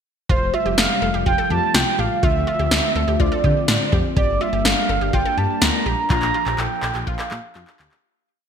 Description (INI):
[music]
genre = synth-pop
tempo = 124 BPM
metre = 4/4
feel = straight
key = F major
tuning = A4 = 440 Hz
[part]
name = mellow horn-like synth lead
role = melody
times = 0.3-7.8 s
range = C5 to Bb5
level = -22 LUFS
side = right 4 dB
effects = chorus, ping-pong delay
[part]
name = warm analog pad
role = sustained chords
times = 0.3-8.0 s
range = C3 to F4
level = -26 LUFS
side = left 2 dB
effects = chorus
[part]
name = analog pluck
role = arpeggios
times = 0.3-7.9 s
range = F4 to A4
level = -28 LUFS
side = equal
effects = chorus, ping-pong delay
[part]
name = smooth gliding synth bass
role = bass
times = 0.3-7.9 s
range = F1 to D3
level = -24 LUFS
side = equal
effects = none
[part]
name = electro analog drum machine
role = drums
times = 0.3-8.0 s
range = handclaps, kick drum, snare drum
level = -20 LUFS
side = left 1 dB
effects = gated reverb
[sound]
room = moderate lush hall reverb, RT60 1.6 s, digital ambience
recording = bright 1980s-style digital production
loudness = -17 LUFS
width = side -7 dB against mid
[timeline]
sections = 0.3-8.0 verse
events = fade-out 6.1-8.0; drum fill 6.1-8.0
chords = 0.3 Fadd9; 2.2 Dm7; 4.2 Gm; 6.1 Bb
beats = | 0.29 0.78 1.26 1.75 | 2.23 2.71 3.20 3.68 | 4.17 4.65 5.13 5.62 | 6.10 6.58 7.07 7.55